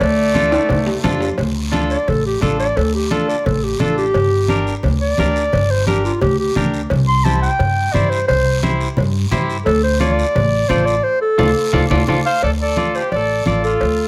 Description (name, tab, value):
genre	latin, cumbia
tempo	174 BPM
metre	4/4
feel	straight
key	D minor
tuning	A4 = 437 Hz
part	mellow clarinet	melody	0.0-14.1 s	F4 to C6	-20 LUFS	equal	none
part	bright trumpet	second line	0.0-1.0, 12.3-14.1 s	A3 to C5	-28 LUFS	equal	none
part	upright bass	bass	0.0-14.1 s	G1 to G2	-22 LUFS	equal	none
part	congas	percussion	0.0-14.0 s	none	-25 LUFS	equal	none
part	cowbell and timbales	percussion	0.0-14.0 s	none	-26 LUFS	equal	none
part	guiro	percussion	0.0-14.1 s	none	-35 LUFS	equal	none
part	semi-hollow electric guitar	accompaniment	0.3-13.7 s	D4 to D5	-25 LUFS	equal	spring reverb
room	light reverb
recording	close, detailed microphones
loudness	-17 LUFS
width	mono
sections	0.0-1.4 A section; 1.4-12.4 B section; 12.4-14.1 C section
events	drum fill 0.5-1.4, 11.0-12.4; clarinet solo 1.4-12.4; band accent 11.0-12.4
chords	0.0 Dm; 4.1 Gm; 6.9 C; 9.7 Dm